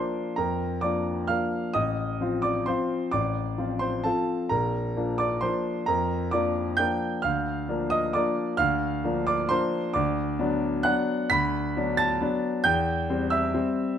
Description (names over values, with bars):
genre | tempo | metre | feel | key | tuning
classical, piano waltz | 132 BPM | 3/4 | uneven beats, rubato | Bb major, B minor from 9.9 s | A4 = 440 Hz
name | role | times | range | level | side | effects
warm concert grand piano | solo | 0.0-14.0 s | A1 to B6 | -24 LUFS | equal | none
room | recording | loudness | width
moderate recital hall reverb, RT60 1.6 s | close, detailed microphones | -24 LUFS | side -9 dB against mid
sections
0.0-14.0 A section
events
none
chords
0.0 Bb; 1.7 F7/A; 4.5 Bb; 7.2 Bb/D; 9.9 Bm/D; 12.7 C/E